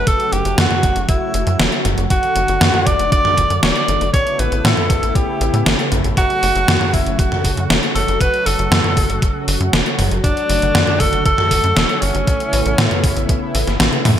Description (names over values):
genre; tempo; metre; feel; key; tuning
synthwave; 118 BPM; 4/4; straight; F# phrygian; A4 = 443 Hz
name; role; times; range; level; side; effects
warm tenor saxophone; melody; 0.0-13.8 s; C#4 to D5; -19 LUFS; equal; ping-pong delay
analog string pad; sustained chords; 0.0-14.2 s; C#3 to F#4; -23 LUFS; equal; ensemble chorus, sidechain pumping
tight sequencer bass; bass; 0.0-14.2 s; E1 to A2; -20 LUFS; equal; sidechain pumping
electronic kick drum; drums; 0.1-13.4 s; none; -18 LUFS; equal; overdrive
gated 80s digital drum machine; drums; 0.1-14.2 s; hi-hat, snare drum, toms; -18 LUFS; equal; gated reverb, gated reverb snare, overdrive
room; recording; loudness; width
moderate plate reverb, RT60 1.5 s; bright 1980s-style digital production; -13 LUFS; side -10 dB against mid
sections
0.0-14.2 A section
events
drum fill 13.8-14.2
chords
0.0 F#m; 2.1 D/F#; 4.1 Aadd9; 6.2 F#m; 10.2 D/F#; 12.3 Aadd9